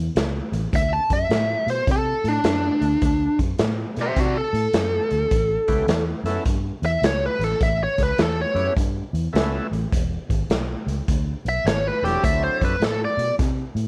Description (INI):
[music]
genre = electric blues shuffle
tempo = 104 BPM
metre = 4/4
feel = swing 65% on 8ths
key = A mixolydian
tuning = A4 = 439 Hz
[part]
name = vintage muted fingered electric bass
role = bass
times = 0.0-13.9 s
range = E1 to C3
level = -28 LUFS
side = equal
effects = none
[part]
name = raw garage drum kit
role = drums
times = 0.2-13.9 s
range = hi-hat, kick drum, snare drum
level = -27 LUFS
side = equal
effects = none
[part]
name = biting lead guitar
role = melody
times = 0.8-13.3 s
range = D4 to A5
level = -24 LUFS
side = equal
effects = overdrive
[part]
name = overdriven tonewheel organ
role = accompaniment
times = 5.7-12.8 s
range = F#3 to A4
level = -31 LUFS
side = equal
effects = slow rotary speaker
[sound]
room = light reverb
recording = none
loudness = -22 LUFS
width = mono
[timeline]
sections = 0.0-13.9 A section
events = lead electric guitar solo 0.0-13.9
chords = 0.0 A; 0.7 D7; 5.3 A7; 9.9 E7; 12.2 D7